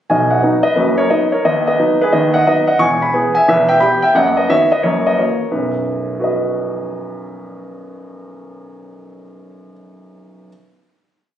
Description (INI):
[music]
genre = jazz, stride piano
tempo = 176 BPM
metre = 4/4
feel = swing 62% on 8ths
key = B major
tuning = A4 = 440 Hz
[part]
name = warm baby grand piano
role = solo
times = 0.1-10.5 s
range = E1 to C#6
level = -13 LUFS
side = equal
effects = none
[sound]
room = light reverb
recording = recorded on a phone in the room, studio reverb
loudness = -12 LUFS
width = side -10 dB against mid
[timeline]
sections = 0.1-5.5 A section; 5.5-8.3 final chord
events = none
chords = 0.1 B; 1.4 B/D#; 2.8 E; 3.5 Em; 4.2 B/F#; 4.8 F#7; 5.5 B